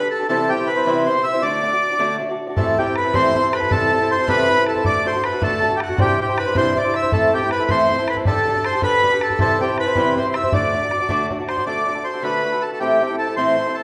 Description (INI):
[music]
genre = celtic folk, Celtic jig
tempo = 106 BPM (dotted quarters)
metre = 6/8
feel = straight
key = D mixolydian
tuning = A4 = 439 Hz
[part]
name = accordion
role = melody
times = 0.0-13.8 s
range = F#4 to E5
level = -21 LUFS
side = equal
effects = none
[part]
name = fingerpicked swing-style acoustic guitar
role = accompaniment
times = 0.0-13.8 s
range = A2 to D5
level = -24 LUFS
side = equal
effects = none
[part]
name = bodhran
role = percussion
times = 2.6-11.6 s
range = none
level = -28 LUFS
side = equal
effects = none
[sound]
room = wet recital hall reverb, RT60 1.5 s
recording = none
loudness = -19 LUFS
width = mono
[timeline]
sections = 0.0-2.6 A section; 2.6-11.7 A section; 11.7-13.8 B section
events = none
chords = 0.3 C; 1.4 D; 2.6 Am7; 3.7 C6; 4.8 D; 6.0 Cadd9; 7.1 Am; 8.3 Dsus4; 9.4 C; 10.5 D; 12.8 Am